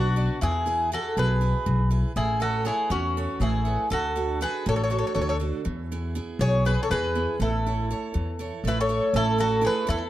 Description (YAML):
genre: greek folk, Greek bouzouki band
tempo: 241 BPM (eighths)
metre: 7/8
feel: straight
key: A major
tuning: A4 = 445 Hz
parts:
  - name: Greek bouzouki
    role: melody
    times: 0.0-10.1 s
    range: F#4 to C#5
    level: -27 LUFS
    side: equal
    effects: slapback echo
  - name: mandolin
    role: second line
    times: 0.0-10.1 s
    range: C#4 to A4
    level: -32 LUFS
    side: left 2 dB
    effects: none
  - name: picked steel-string acoustic guitar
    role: accompaniment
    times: 0.0-10.1 s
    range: B2 to D5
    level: -32 LUFS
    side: right 6 dB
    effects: none
  - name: upright bass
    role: bass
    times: 0.0-10.1 s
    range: A1 to E2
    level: -26 LUFS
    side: equal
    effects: none
room: light reverb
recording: dark, warm production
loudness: -23 LUFS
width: side -14 dB against mid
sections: 0.0-9.1 A section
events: none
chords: 0.4 E; 2.2 Aadd9; 3.9 D; 5.7 E; 7.4 A